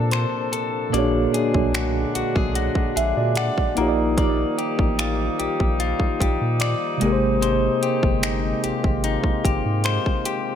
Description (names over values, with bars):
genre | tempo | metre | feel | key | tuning
contemporary R&B | 74 BPM | 4/4 | straight | Bb major | A4 = 442 Hz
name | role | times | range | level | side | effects
mellow tine electric piano | accompaniment | 0.0-10.6 s | Bb2 to Bb5 | -24 LUFS | right 1 dB | medium stereo tremolo, analog delay
mellow brass ensemble | sustained chords | 0.0-10.6 s | C3 to A4 | -28 LUFS | right 1 dB | none
direct-recorded clean electric guitar | arpeggios | 0.0-10.6 s | Ab3 to D5 | -27 LUFS | left 9 dB | analog delay
warm sub bass | bass | 0.0-10.0 s | G1 to Bb2 | -25 LUFS | equal | none
trap drum kit | drums | 0.1-10.4 s | finger snaps, hi-hat, kick drum | -24 LUFS | equal | none
room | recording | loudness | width
light reverb | echo-heavy mix | -19 LUFS | side -9 dB against mid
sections
0.0-10.6 A section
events
tine electric piano fill 2.6-4.2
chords
0.0 Bbmaj9; 0.9 Bb7alt; 3.8 Ebmaj9; 7.0 Abmaj7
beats
0.12 | 0.93 1.74 2.56 3.37 | 4.18 4.99 5.80 6.61 | 7.42 8.23 9.04 9.85